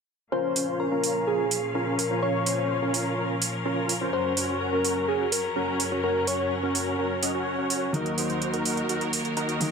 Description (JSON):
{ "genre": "EDM, festival progressive house", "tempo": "126 BPM", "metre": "4/4", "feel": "straight", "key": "Bb minor", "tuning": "A4 = 439 Hz", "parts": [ { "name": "soft struck synth lead", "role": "melody", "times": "0.3-7.2 s", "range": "Ab4 to Db5", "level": "-29 LUFS", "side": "left 2 dB", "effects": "chorus, ping-pong delay" }, { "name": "bright symphonic string section", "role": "sustained chords", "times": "0.3-9.7 s", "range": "Eb2 to F5", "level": "-31 LUFS", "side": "left 1 dB", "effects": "low-pass filter" }, { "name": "dense compressed supersaw", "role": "riff", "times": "0.3-9.7 s", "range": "Db4 to Eb5", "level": "-28 LUFS", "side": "right 1 dB", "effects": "low-pass filter, ping-pong delay" }, { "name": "electronic hi-hat", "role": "drums", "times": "0.6-9.7 s", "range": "none", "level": "-28 LUFS", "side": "right 4 dB", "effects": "none" }, { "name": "dark grand piano", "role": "accompaniment", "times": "7.9-9.7 s", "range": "Eb3 to Eb4", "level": "-30 LUFS", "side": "equal", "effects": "ping-pong delay" } ], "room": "light reverb, small room ambience", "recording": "none", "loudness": "-24 LUFS", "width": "side -5 dB against mid", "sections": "0.3-9.7 A section", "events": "none", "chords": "0.3 Bbm; 4.1 Gb; 7.9 Ebm" }